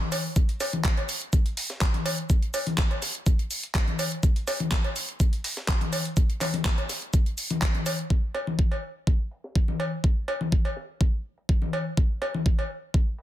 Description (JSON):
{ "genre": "house", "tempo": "124 BPM", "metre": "4/4", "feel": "straight", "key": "none", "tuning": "none", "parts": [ { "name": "congas and cowbell", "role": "percussion", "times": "0.0-12.7 s", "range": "none", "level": "-29 LUFS", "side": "left 2 dB", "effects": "sidechain pumping on perc" }, { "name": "breakbeat sampler-style drum kit", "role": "drums", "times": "0.1-13.2 s", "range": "hi-hat, shaker, snare drum", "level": "-39 LUFS", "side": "equal", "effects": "high-pass filter on snare, low-pass filter on snare, high-pass filter on perc, low-pass filter on perc, high-pass filter on hats, low-pass filter on hats" }, { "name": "pop drum kit", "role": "drums", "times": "0.1-8.1 s", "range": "handclaps, hi-hat", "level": "-31 LUFS", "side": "right 1 dB", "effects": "overdrive" }, { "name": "electronic kick drum", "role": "drums", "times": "0.4-13.0 s", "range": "none", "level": "-22 LUFS", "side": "equal", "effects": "overdrive" } ], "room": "digital ambience", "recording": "dense, heavily limited modern master", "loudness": "-24 LUFS", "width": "side -13 dB against mid", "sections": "0.0-8.1 A section; 8.1-13.2 B section", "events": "none", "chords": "none" }